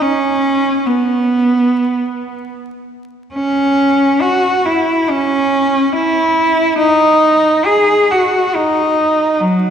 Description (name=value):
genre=classical, free, expressive piece for unaccompanied cello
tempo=free time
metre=none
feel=none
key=unclear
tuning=A4 = 437 Hz
part: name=clear cello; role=solo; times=0.0-9.7 s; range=F#3 to G#4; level=-12 LUFS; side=equal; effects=none
room=wet concert hall reverb, RT60 2.4 s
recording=heard from further back in the room, vinyl crackle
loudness=-11 LUFS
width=side -8 dB against mid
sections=0.0-9.7 A section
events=none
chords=none